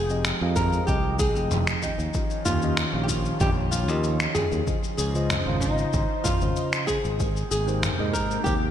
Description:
sunset chillout; 95 BPM; 4/4; straight; A4 = 440 Hz
flamenco guitar; melody; 0.0-8.5 s; Eb4 to Bb4; -29 LUFS; equal; vintage 12-bit sampler grit, ping-pong delay
lush unison pad; sustained chords; 0.0-8.7 s; C3 to G5; -33 LUFS; equal; chorus, phaser
modern bright fingered electric bass; bass; 0.0-8.7 s; F1 to Ab2; -27 LUFS; equal
mellow tine electric piano; accompaniment; 0.1-8.5 s; Db3 to Ab5; -31 LUFS; equal; auto-pan, ping-pong delay
dusty soul sampler-style drum kit; drums; 0.1-8.6 s; finger snaps, shaker, toms; -28 LUFS; equal; gated reverb
electronic kick drum; drums; 0.6-8.6 s; -29 LUFS; equal
moderate lush hall reverb, RT60 2.4 s; bright 1980s-style digital production; -22 LUFS; side -10 dB against mid
0.0-8.7 A section
0.0 Fm9; 1.8 Eb9; 4.7 Dbmaj9; 7.2 Abmaj9

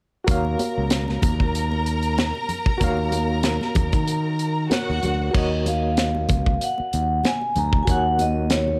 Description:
lush 1970s-style soul; 95 BPM; 4/4; swing 54% on 16ths; Eb minor; A4 = 440 Hz
barky reed electric piano; accompaniment; 0.2-8.8 s; Gb4 to Gb5; -31 LUFS; equal; overdrive, fast tremolo
warm studio violin section; second line; 0.3-5.3 s; Gb4 to Bb5; -31 LUFS; equal
overdriven fingered electric bass; bass; 0.3-8.8 s; Db2 to Eb3; -26 LUFS; equal
modern studio drum kit; drums; 0.3-8.7 s; crash cymbal, hi-hat, kick drum, snare drum; -26 LUFS; equal
congas; percussion; 0.3-8.8 s; -34 LUFS; equal
vibraphone with medium hard mallets; melody; 5.4-8.8 s; Db5 to Bb5; -27 LUFS; equal; slapback echo
light reverb, small room ambience; -22 LUFS; mono
0.3-5.3 A section; 5.3-8.8 B section
0.3 Ebm7

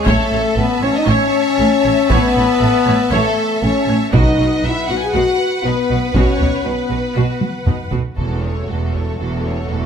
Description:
cinematic, epic orchestral film score; 118 BPM; 4/4; straight; A4 = 440 Hz
clear symphonic violin section; melody; 0.0-9.9 s; A4 to G#5; -24 LUFS; left 3 dB
clear symphonic violin section; second line; 0.0-9.9 s; F#4 to A5; -25 LUFS; equal
clear symphonic viola section; accompaniment; 0.0-9.9 s; F#3 to C#5; -25 LUFS; right 3 dB
mellow French horn section; sustained chords; 0.0-9.9 s; A3 to G#4; -18 LUFS; left 4 dB
rich studio cello section; bass; 0.1-9.9 s; E2 to B2; -22 LUFS; right 1 dB
rich symphonic double bass section; bass; 0.1-9.9 s; E1 to B1; -22 LUFS; right 3 dB
taiko ensemble; drums; 0.1-9.2 s; -18 LUFS; equal
timpani; percussion; 4.1-4.9, 8.2-8.9 s; E2 to B2; -25 LUFS; equal
moderate recital hall reverb, RT60 1.5 s; -14 LUFS; side -7 dB against mid
0.0-8.2 A section; 8.2-9.9 B section
drum fill 7.4-8.2
0.1 A; 4.1 B; 8.2 F#m/E

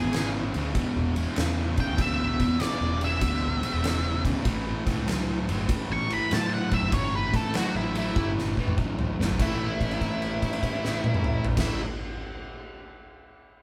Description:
blues rock power trio and southern rock; 97 BPM; 4/4; swing 67% on 8ths; A mixolydian; A4 = 440 Hz
octave-fuzz lead guitar; melody; 0.0-11.8 s; E4 to C#6; -33 LUFS; equal; distortion
fuzz guitar; riff; 0.0-11.8 s; E2 to A3; -32 LUFS; equal; distortion
vintage muted picked electric bass; bass; 0.0-11.8 s; E1 to A2; -34 LUFS; equal
oversized low-tuned drum kit; drums; 0.1-11.7 s; crash cymbal, kick drum, ride cymbal, snare drum, toms; -31 LUFS; equal
moderate stone room reverb, RT60 1.3 s; band playing live in one room; -27 LUFS; mono
0.0-9.4 A section; 9.4-11.9 B section
drum fill 8.2-9.4; held note 9.4-11.5
0.0 E7(no3); 4.5 A7(no3); 9.4 A5

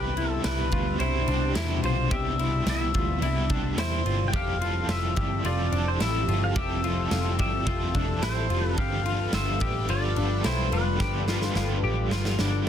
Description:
dream pop; 108 BPM; 4/4; straight; C major; A4 = 441 Hz
pedal steel guitar; melody; 0.0-12.6 s; B4 to G5; -31 LUFS; left 1 dB; tape echo
overdriven electric guitar; accompaniment; 0.0-12.7 s; G2 to A4; -34 LUFS; right 3 dB; tremolo, wide subtle chorus
lush unison pad; sustained chords; 0.1-12.7 s; B2 to B4; -32 LUFS; equal; chorus, phaser
clean electric guitar; arpeggios; 0.0-12.7 s; D4 to G4; -32 LUFS; left 6 dB; analog chorus, tape echo
vintage muted picked electric bass; bass; 0.0-12.6 s; F1 to E2; -28 LUFS; equal
huge arena drum kit; drums; 0.2-12.5 s; kick drum, ride cymbal, snare drum, tambourine; -31 LUFS; equal
light reverb; dense, heavily limited modern master; -23 LUFS; side -9 dB against mid
0.0-12.7 A section
drum fill 11.0-12.7
0.0 Cmaj7; 4.3 Fmaj9; 8.8 G7

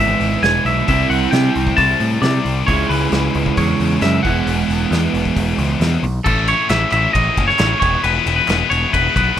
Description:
indie rock; 134 BPM; 4/4; straight; A4 = 441 Hz
twangy electric guitar; melody; 0.0-9.4 s; A4 to A5; -18 LUFS; left 1 dB; phaser
raw garage guitar; riff; 0.0-6.0 s; C3 to E4; -20 LUFS; right 6 dB; overdrive, lush chorus
scooped high-gain guitar; riff; 0.0-9.4 s; A2 to E4; -22 LUFS; left 8 dB; distortion
growling picked electric bass; bass; 0.0-9.4 s; E1 to C3; -19 LUFS; equal; overdrive
loose indie drum kit; drums; 0.2-9.3 s; crash cymbal, hi-hat, kick drum, ride cymbal, snare drum; -23 LUFS; equal
group handclap; percussion; 6.7-8.6 s; -28 LUFS; right 5 dB
little or no reverb; rough home demo mix; -14 LUFS; side -10 dB against mid
0.0-6.3 A section; 6.3-9.4 B section
0.0 E; 0.9 Cadd9; 2.7 C#m; 4.2 Eadd9; 6.3 A; 7.8 E

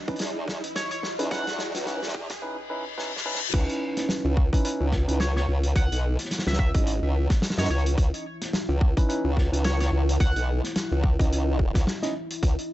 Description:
glitch hop; 108 BPM; 4/4; swing 57% on 16ths; C# minor; A4 = 441 Hz
riser and reverse cymbal; sound effects; 0.0-3.5 s; -34 LUFS; left 2 dB
deep dark ambient pad; texture; 0.0-12.7 s; E3 to B5; -37 LUFS; left 2 dB; chorus, built-in reverb, sidechain pumping
tine electric piano; stabs; 0.1-12.1 s; C#4 to D#5; -31 LUFS; right 1 dB; medium tremolo, vintage 12-bit sampler grit, sidechain pumping, low-pass filter, digital delay
electronic kick drum; drums; 0.1-12.6 s; -23 LUFS; equal; overdrive
loose indie drum kit; drums; 0.1-12.7 s; crash cymbal, hi-hat, snare drum; -31 LUFS; equal
formant-sweep wobble bass; bass; 0.2-12.6 s; G#1 to F#2; -25 LUFS; equal; chorus, tube saturation, high-pass filter
sync lead; melody; 0.8-1.6, 5.2-10.4 s; C#5 to F#5; -34 LUFS; equal; chorus, cassette tape, digital delay
little or no reverb; high-pass filter, nothing above 8.0 kHz, faint mains hum; -23 LUFS; side -15 dB against mid
0.0-3.5 A section; 3.5-12.7 B section
build-up 0.0-3.5; drum fill 0.0-2.4, 3.0-3.5; riser 0.0-2.4; filter sweep on tine electric piano 0.0-3.5; filter sweep 0.0-3.5; reverse cymbal 2.4-3.5; drop 3.5-12.7
0.0 C#m9

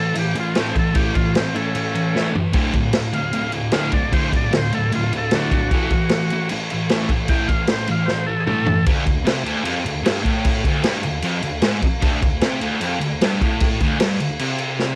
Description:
garage rock duo or trio; 152 BPM; 4/4; straight; A4 = 440 Hz
overdriven combo organ; melody; 0.0-8.9 s; A3 to G5; -27 LUFS; equal
thick fuzz guitar; riff; 0.0-15.0 s; D2 to A3; -24 LUFS; equal; distortion, cassette tape
vintage drum kit; drums; 0.2-14.9 s; crash cymbal, kick drum, snare drum, toms; -23 LUFS; equal; cassette tape
light reverb; home recording on cassette; -20 LUFS; mono
0.0-8.9 A section; 8.9-15.0 B section
transistor combo organ solo 0.0-8.9; drum fill 2.1-2.5, 8.1-8.9, 14.8
0.0 A; 2.5 D; 5.7 A5; 8.9 D5

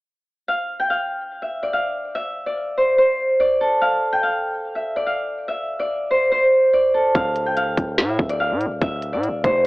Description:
hip hop, drill; 144 BPM; 4/4; half-time; D minor; A4 = 440 Hz
Celtic harp; melody; 0.5-9.7 s; A4 to G5; -18 LUFS; equal
distorted 808-style bass; bass; 7.1-9.7 s; C1 to A2; -25 LUFS; equal; distortion
drill drum kit; drums; 7.1-9.5 s; hi-hat, kick drum, snare drum; -21 LUFS; equal
little or no reverb; dry, gritty hardware recording, transformer saturation, cassette tape, AM radio sound; -18 LUFS; side -20 dB against mid
0.5-7.1 A section; 7.1-9.7 B section
0.5 N.C.; 7.1 Dm7

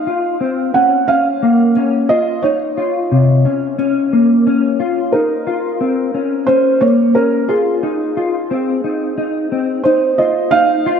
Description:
dream pop; 89 BPM; 4/4; straight; Bb minor; A4 = 440 Hz
felt-muted upright piano; melody; 0.0-11.0 s; Ab4 to Gb5; -16 LUFS; right 3 dB; dub echo
mellow electric guitar; arpeggios; 0.0-11.0 s; C3 to F4; -15 LUFS; left 2 dB; ensemble chorus, dub echo
wet plate reverb, RT60 2.5 s; echo-heavy mix; -12 LUFS; side -7 dB against mid
0.0-10.5 A section
0.0 Bbm; 5.1 Bbmadd9; 7.8 Fm7

